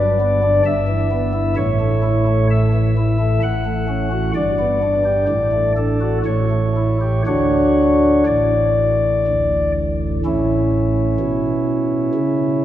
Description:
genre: classical, chorale-style piece for pipe organ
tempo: 60-66 BPM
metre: 3/4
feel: rubato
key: D major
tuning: A4 = 441 Hz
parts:
  - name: pipe organ, flutes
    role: solo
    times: 0.0-12.6 s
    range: D1 to F#5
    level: -15 LUFS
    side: equal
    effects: none
room: wet church reverb, RT60 3.2 s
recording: heard from further back in the room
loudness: -15 LUFS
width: side -12 dB against mid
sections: 0.0-10.2 A section; 10.2-12.6 B section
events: none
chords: 0.0 Gmaj7; 0.7 Em/G; 1.6 A; 3.4 F#m/A; 4.3 G; 5.3 D/A; 6.3 A7; 7.3 D; 10.2 A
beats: 0.66 | 1.58 2.50 3.43 | 4.34 5.28 6.25 | 7.25 8.26 9.26 | 10.24 11.20 12.14

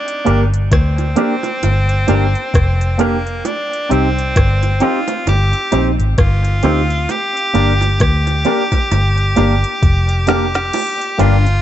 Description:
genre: roots reggae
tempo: 66 BPM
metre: 4/4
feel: swing 59% on 16ths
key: unclear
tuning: A4 = 440 Hz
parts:
  - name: edgy tenor saxophone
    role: melody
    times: 0.0-11.6 s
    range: Bb3 to G4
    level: -20 LUFS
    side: equal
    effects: dub echo
  - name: organic electronic drum kit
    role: drums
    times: 0.1-11.6 s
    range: crash cymbal, hi-hat, kick drum, rim click, snare drum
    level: -17 LUFS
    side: equal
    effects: overdrive
  - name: percussive organ stab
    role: stabs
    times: 0.2-11.4 s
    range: Bb3 to C5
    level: -21 LUFS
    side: left 3 dB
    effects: chorus
  - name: electric guitar with an envelope filter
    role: accompaniment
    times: 0.3-11.4 s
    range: Bb3 to G4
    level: -22 LUFS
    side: right 5 dB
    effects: vibrato effect, dub echo
  - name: vintage muted fingered electric bass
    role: bass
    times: 0.3-11.6 s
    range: F1 to D2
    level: -15 LUFS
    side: equal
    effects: none
  - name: bongos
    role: percussion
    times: 0.7-11.0 s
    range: none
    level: -26 LUFS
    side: right 5 dB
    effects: none
  - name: mellow clav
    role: riff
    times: 11.2-11.5 s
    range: G2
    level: -19 LUFS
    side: left 5 dB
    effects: none
room: little or no reverb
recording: nothing above 8.0 kHz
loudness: -13 LUFS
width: side -12 dB against mid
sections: 0.0-10.7 A section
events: drum fill 8.9-10.7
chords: 0.0 Gm; 3.4 Cm; 7.1 Gm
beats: 0.71 1.62 2.54 | 3.45 4.36 5.27 6.18 | 7.09 8.00 8.91 9.82 | 10.73

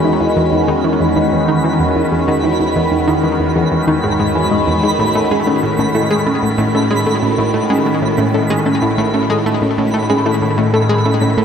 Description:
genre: ambient, sequencer-driven space music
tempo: 94 BPM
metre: 4/4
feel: straight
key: unclear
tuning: A4 = 440 Hz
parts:
  - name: evolving wavetable pad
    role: sustained chords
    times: 0.0-11.4 s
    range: E2 to F#4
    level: -16 LUFS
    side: equal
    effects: phaser, built-in reverb, shimmer reverb
  - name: thumb-piano-like synth pluck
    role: arpeggios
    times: 0.0-11.3 s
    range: C#4 to G#5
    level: -21 LUFS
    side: moving between left 4 dB and right 4 dB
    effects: chorus, auto-pan, ping-pong delay, shimmer reverb
  - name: analog pluck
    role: riff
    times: 0.0-11.4 s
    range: E2 to A3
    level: -17 LUFS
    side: left 1 dB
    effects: chorus, ping-pong delay, shimmer reverb
  - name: twinkling granular texture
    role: texture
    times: 0.0-11.4 s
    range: B5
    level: -22 LUFS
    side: right 1 dB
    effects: built-in reverb, shimmer reverb
room: wet plate reverb, RT60 2.8 s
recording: dreamy mix soaked in reverb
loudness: -12 LUFS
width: side -7 dB against mid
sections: 0.0-11.4 A section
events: filter sweep on synth arpeggio sound 0.0-11.4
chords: 0.0 Emaj7; 5.0 Aadd9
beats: 0.53 1.16 1.80 | 2.44 3.08 3.72 4.36 | 4.99 5.63 6.27 6.91 | 7.55 8.19 8.82 9.46 | 10.10 10.74 11.38

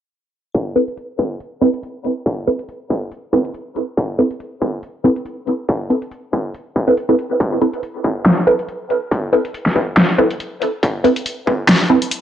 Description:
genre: deep dubstep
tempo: 140 BPM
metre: 4/4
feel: swing 55% on 16ths, half-time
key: A minor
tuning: A4 = 439 Hz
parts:
  - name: dubstep drum kit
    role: drums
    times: 0.5-12.2 s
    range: hi-hat, snare drum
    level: -14 LUFS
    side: equal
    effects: studio reverb
  - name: electronic kick drum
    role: drums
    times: 0.5-11.6 s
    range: none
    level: -20 LUFS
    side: equal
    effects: distortion, high-pass filter on kick, studio reverb
  - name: filtered dub chord stab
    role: stabs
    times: 0.8-12.0 s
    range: C4 to B4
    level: -16 LUFS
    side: right 1 dB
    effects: phaser, dub echo
room: moderate spring reverb, RT60 1.3 s, digital ambience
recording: dry, gritty hardware recording, cassette tape, low-pass filter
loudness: -16 LUFS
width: side -10 dB against mid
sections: 0.5-12.2 A section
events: filter sweep 0.5-12.2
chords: 0.5 Amadd9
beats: | 0.54 0.97 1.40 1.83 | 2.26 2.69 3.12 3.54 | 3.97 4.40 4.83 5.26 | 5.69 6.12 6.54 6.97 | 7.40 7.83 8.26 8.69 | 9.12 9.54 9.97 10.40 | 10.83 11.26 11.69 12.12

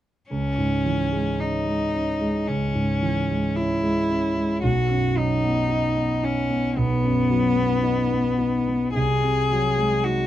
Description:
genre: classical, romantic duo for cello and grand piano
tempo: 56 BPM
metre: 4/4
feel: rubato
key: C# minor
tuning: A4 = 440 Hz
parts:
  - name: clear cello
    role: melody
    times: 0.3-10.3 s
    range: B3 to G#4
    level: -24 LUFS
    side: left 2 dB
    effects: none
  - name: warm concert grand piano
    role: accompaniment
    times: 0.3-10.3 s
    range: B1 to D#4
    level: -23 LUFS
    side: right 1 dB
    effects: none
room: light reverb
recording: dark, warm production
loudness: -20 LUFS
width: side -12 dB against mid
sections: 0.3-10.3 A section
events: none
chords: 0.3 C#m; 4.6 B; 9.0 G#7/B#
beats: | 0.30 1.40 2.48 3.57 | 4.63 5.71 6.78 7.84 | 8.96 10.04

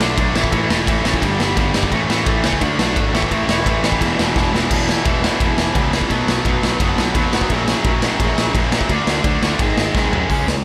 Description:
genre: punk rock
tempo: 172 BPM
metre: 4/4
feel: straight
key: E lydian from 4.7 s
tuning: A4 = 440 Hz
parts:
  - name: distorted electric guitar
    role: riff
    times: 0.0-10.6 s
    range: E2 to D4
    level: -21 LUFS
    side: equal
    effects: overdrive
  - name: fuzz picked electric bass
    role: bass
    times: 0.0-10.6 s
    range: E1 to G#2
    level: -25 LUFS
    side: equal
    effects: overdrive
  - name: raw garage drum kit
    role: drums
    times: 0.0-10.6 s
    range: crash cymbal, hi-hat, kick drum, ride cymbal, snare drum, toms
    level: -21 LUFS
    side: equal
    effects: none
room: light reverb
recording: none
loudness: -17 LUFS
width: mono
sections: 0.0-4.7 A section; 4.7-10.3 B section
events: drum fill 4.4-4.7, 9.9-10.3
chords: 0.3 A5; 1.2 G5; 1.9 A; 2.6 D5; 3.1 A5; 4.0 E5; 6.1 B5; 7.5 F#/A#; 8.9 D5; 9.6 G#7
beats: 0.17 | 0.52 0.87 1.22 1.57 | 1.92 2.27 2.62 2.96 | 3.31 3.66 4.01 4.36 | 4.71 5.06 5.40 5.75 | 6.10 6.45 6.80 7.15 | 7.50 7.85 8.20 8.54 | 8.89 9.24 9.59 9.94 | 10.29

